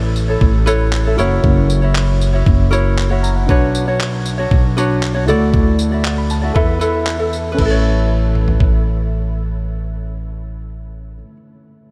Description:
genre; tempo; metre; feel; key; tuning
acoustic pop; 117 BPM; 4/4; straight; A major; A4 = 438 Hz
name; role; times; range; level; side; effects
reed electric piano; accompaniment; 0.0-11.9 s; C#4 to B5; -29 LUFS; equal; fast tremolo
ukulele; accompaniment; 0.0-11.4 s; D4 to E5; -22 LUFS; equal; none
upright bass; bass; 0.0-11.2 s; F#1 to E2; -19 LUFS; equal; none
dusty soul sampler-style drum kit; drums; 0.2-8.7 s; crash cymbal, handclaps, kick drum, tambourine, toms; -20 LUFS; equal; none
room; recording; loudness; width
light reverb; none; -15 LUFS; mono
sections
0.0-7.6 A section; 7.6-11.7 B section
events
none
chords
0.0 Aadd9; 1.2 F#7; 3.5 Bmadd9; 5.3 Dadd9; 6.6 Esus4; 7.6 Aadd9

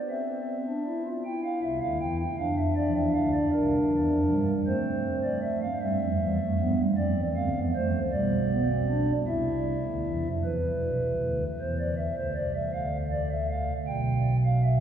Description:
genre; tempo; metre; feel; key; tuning
classical, baroque-style 3-part fugue for pipe organ; 52 BPM (dotted quarters); 6/8; straight; unclear; A4 = 443 Hz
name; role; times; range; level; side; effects
pipe organ, stopped flute; solo; 0.1-14.8 s; B1 to G5; -25 LUFS; right 1 dB; none
room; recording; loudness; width
wet cathedral reverb, RT60 5.1 s; recorded in a church or concert hall, small room ambience; -25 LUFS; side -9 dB against mid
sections
0.0-10.4 A section; 10.4-14.8 B section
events
none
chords
0.1 C; 1.2 F5; 2.4 Dmadd9; 3.5 C; 4.7 F/A; 5.8 C; 7.0 Dm7; 8.1 G/B; 9.3 C; 10.4 E5; 11.6 Cadd9; 12.7 Dm; 13.9 G/B

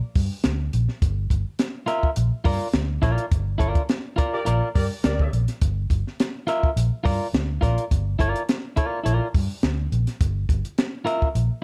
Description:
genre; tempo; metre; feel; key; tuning
funk; 104 BPM; 4/4; straight; G dorian; A4 = 437 Hz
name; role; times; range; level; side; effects
vintage muted fingered electric bass; bass; 0.2-11.5 s; G1 to G2; -26 LUFS; equal; none
compact cocktail drum kit; drums; 0.2-11.5 s; hi-hat, kick drum, snare drum; -26 LUFS; equal; none
electric guitar at the edge of break-up; accompaniment; 1.9-11.3 s; F4 to E5; -28 LUFS; equal; none
mellow horn section; second line; 4.3-5.3 s; G4 to D5; -32 LUFS; equal; none
room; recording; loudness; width
light reverb; dark, warm production; -23 LUFS; mono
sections
0.0-11.6 A section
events
band accent 3.3-5.6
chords
0.0 Gm7

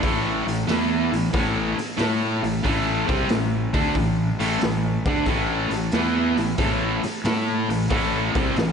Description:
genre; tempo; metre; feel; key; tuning
blues rock power trio and southern rock; 91 BPM; 4/4; swing 68% on 8ths; A minor; A4 = 441 Hz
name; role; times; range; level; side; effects
overdriven electric guitar; riff; 0.0-8.7 s; A2 to A4; -22 LUFS; equal; none
fuzz fingered electric bass; bass; 0.0-8.7 s; A1 to A2; -28 LUFS; equal; overdrive
raw garage drum kit; drums; 0.0-8.7 s; hi-hat, kick drum, snare drum; -26 LUFS; equal; none
room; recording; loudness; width
moderate lush hall reverb, RT60 2.8 s; big arena sound, nothing above 10.7 kHz; -20 LUFS; side -6 dB against mid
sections
0.0-8.7 A section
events
none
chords
0.0 Am

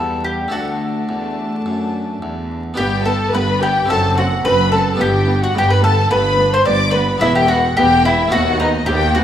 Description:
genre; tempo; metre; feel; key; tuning
classical, baroque-style concerto movement with solo episodes; 108 BPM; 4/4; straight; G major; A4 = 440 Hz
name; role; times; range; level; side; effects
mandolin; melody; 0.0-9.2 s; D#4 to D5; -18 LUFS; left 2 dB; none
rich studio violin section; melody; 0.0-9.2 s; D#5 to D6; -24 LUFS; left 5 dB; none
dark chamber violin section; second line; 0.0-9.2 s; B3 to D5; -21 LUFS; equal; none
harpsichord; accompaniment; 0.0-9.2 s; D2 to A4; -26 LUFS; equal; none
warm symphonic viola section; accompaniment; 0.0-9.2 s; G3 to C4; -24 LUFS; equal; none
rich chamber cello section; bass; 0.0-9.2 s; D2 to G2; -22 LUFS; right 2 dB; none
rich chamber double bass section; bass; 2.8-9.2 s; E1 to D#2; -21 LUFS; right 1 dB; none
room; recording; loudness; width
wet recital hall reverb, RT60 1.5 s; minimal, uncompressed stereo recording, vinyl crackle; -14 LUFS; side -10 dB against mid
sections
0.0-2.8 A section; 2.8-9.2 B section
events
none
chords
0.0 Em; 0.5 D; 2.8 G; 3.9 D7/F#; 5.0 G; 7.2 E5; 8.3 B7/D#

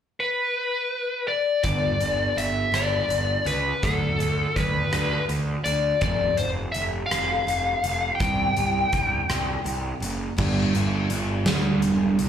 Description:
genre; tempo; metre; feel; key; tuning
quiet-loud alternative rock; 55 BPM (dotted quarters); 6/8; straight; G major; A4 = 439 Hz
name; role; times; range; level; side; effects
biting lead guitar; melody; 0.2-10.0 s; A4 to G5; -24 LUFS; left 2 dB; overdrive, slapback echo
picked plugged-in steel-string acoustic guitar; arpeggios; 1.6-12.3 s; F2 to C4; -28 LUFS; right 2 dB; slapback echo
fuzz picked electric bass; bass; 1.6-12.3 s; E1 to D2; -27 LUFS; right 1 dB; overdrive
huge arena drum kit; drums; 1.6-12.3 s; crash cymbal, hi-hat, kick drum, rim click, snare drum; -28 LUFS; equal; none
room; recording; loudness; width
small room ambience; live gig heard through the venue's PA, club reverb; -22 LUFS; side -9 dB against mid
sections
0.0-1.6 A section; 1.6-10.4 B section; 10.4-12.3 C section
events
none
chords
0.0 N.C.; 1.6 G5; 3.8 D; 6.0 F5; 8.2 C5; 10.4 G5

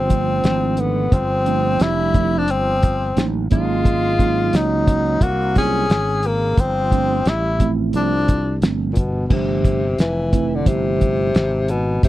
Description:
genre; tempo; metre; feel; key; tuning
hip hop, jazz-hop; 88 BPM; 4/4; swing 63% on 16ths; unclear; A4 = 440 Hz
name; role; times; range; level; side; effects
breathy tenor saxophone; melody; 0.0-12.1 s; Bb2 to Ab4; -20 LUFS; left 2 dB; none
breathy tenor saxophone; second line; 0.0-8.6 s; Db3 to Db4; -29 LUFS; right 5 dB; none
sustaining fretless electric bass; bass; 0.0-12.1 s; F1 to Db2; -22 LUFS; equal; none
mellow tine electric piano; accompaniment; 0.1-11.3 s; F3 to F4; -23 LUFS; right 7 dB; wide subtle chorus
cloth-damped thuddy drum kit; drums; 0.1-12.1 s; crash cymbal, hi-hat, kick drum, snare drum; -17 LUFS; equal; none
room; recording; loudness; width
little or no reverb; dry, close 1970s-style studio recording; -16 LUFS; side -15 dB against mid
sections
0.0-9.3 A section; 9.3-12.1 A section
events
none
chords
0.0 G9sus4; 3.5 Ab9sus4; 6.6 G9sus4

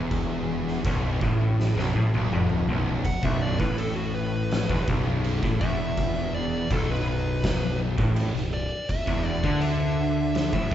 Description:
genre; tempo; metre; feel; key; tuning
stoner and doom metal; 82 BPM; 4/4; straight; B minor; A4 = 440 Hz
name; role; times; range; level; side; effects
crunchy overdriven guitar; riff; 0.0-10.7 s; B1 to D3; -30 LUFS; equal; none
thick fuzz guitar; riff; 0.0-10.7 s; B1 to D3; -30 LUFS; left 4 dB; distortion
thick fuzz guitar; riff; 0.0-10.7 s; B1 to D3; -32 LUFS; right 4 dB; distortion
fuzz fingered electric bass; bass; 0.0-10.7 s; B0 to D2; -30 LUFS; equal; overdrive, tube saturation
oversized low-tuned drum kit; drums; 0.1-10.7 s; crash cymbal, kick drum, snare drum, toms; -29 LUFS; equal; none
fuzz lead guitar; melody; 3.1-10.7 s; F#4 to F#5; -32 LUFS; equal; distortion
room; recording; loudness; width
moderate large studio reverb, RT60 1.3 s; band playing live in one room, nothing above 7.8 kHz; -23 LUFS; side -11 dB against mid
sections
0.0-3.0 A section; 3.0-10.7 B section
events
drum fill 1.6-3.0; lead electric guitar solo 3.0-10.7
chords
0.0 B7sus4; 8.9 Dsus2

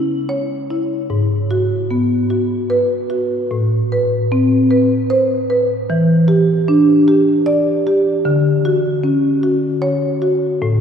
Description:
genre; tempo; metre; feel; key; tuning
classical, contemporary piece for solo marimba; 75 BPM; 3/4; rubato; unclear; A4 = 440 Hz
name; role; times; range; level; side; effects
marimba with medium mallets; solo; 0.0-10.8 s; G#2 to D5; -13 LUFS; equal; none
room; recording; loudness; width
wet cathedral reverb, RT60 4.6 s; heard from further back in the room; -13 LUFS; side -7 dB against mid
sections
0.0-10.8 A section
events
none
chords
0.0 C#m; 1.1 G#m7; 3.5 Amadd9; 5.9 Em7; 8.3 Dmaj7

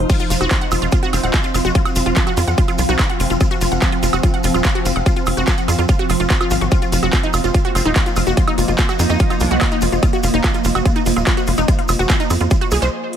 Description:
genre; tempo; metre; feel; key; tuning
psychedelic trance; 145 BPM; 4/4; straight; unclear; A4 = 439 Hz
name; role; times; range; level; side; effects
swarming drone; sustained chords; 0.0-12.9 s; F3 to Eb4; -23 LUFS; right 1 dB; built-in reverb, sidechain pumping
tight sequencer bass; bass; 0.0-12.9 s; Eb1 to F2; -19 LUFS; equal; none
granular cloud pad; texture; 0.0-12.9 s; F4 to F5; -28 LUFS; right 1 dB; built-in reverb, sidechain pumping
wide unison pluck; riff; 0.1-12.9 s; Eb4 to Gb5; -22 LUFS; moving between left 5 dB and right 5 dB; auto-pan, sidechain pumping, dub echo
big-room dance drum kit; drums; 0.1-13.2 s; crash cymbal, handclaps, hi-hat, woodblock; -24 LUFS; right 2 dB; none
electronic kick drum; drums; 0.1-12.6 s; none; -17 LUFS; equal; none
maracas; percussion; 0.1-12.9 s; none; -30 LUFS; right 1 dB; none
metallic wobble bass; second line; 1.1-3.1, 7.8-9.6 s; C4 to F4; -32 LUFS; left 4 dB; none
room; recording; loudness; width
light reverb; none; -14 LUFS; side -9 dB against mid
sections
0.0-13.2 A section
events
stop 12.9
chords
0.0 F5

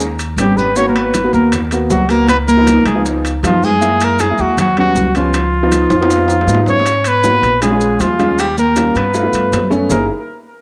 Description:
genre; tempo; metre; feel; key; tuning
Afro-Cuban jazz; 158 BPM; 4/4; straight; F# major; A4 = 443 Hz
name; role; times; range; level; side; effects
upright bass; bass; 0.0-10.1 s; F#1 to G#2; -22 LUFS; equal; none
bongos; percussion; 0.0-10.0 s; none; -30 LUFS; equal; none
congas; percussion; 0.0-10.0 s; none; -27 LUFS; equal; none
maracas; percussion; 0.0-10.0 s; none; -30 LUFS; equal; none
timbales; percussion; 0.2-10.0 s; none; -25 LUFS; equal; none
mellow trumpet; melody; 0.4-10.1 s; E#4 to C#5; -18 LUFS; equal; cassette tape, analog delay
nylon-string guitar; second line; 0.4-10.1 s; E#3 to C#4; -20 LUFS; equal; none
warm upright piano; accompaniment; 0.4-10.1 s; E#3 to G#4; -20 LUFS; equal; none
room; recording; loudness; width
wet spring reverb, RT60 1.4 s, small room ambience; home recording on cassette; -13 LUFS; mono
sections
0.0-6.9 A section; 6.9-9.9 B section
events
drum fill 5.9-6.9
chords
0.0 D#aug7; 0.8 G#m7; 2.3 C#7; 3.8 F#7; 4.6 D#7alt; 5.3 C#7; 6.9 G#m7; 7.6 A#m7; 8.4 D#7; 9.1 G7; 9.9 F#13

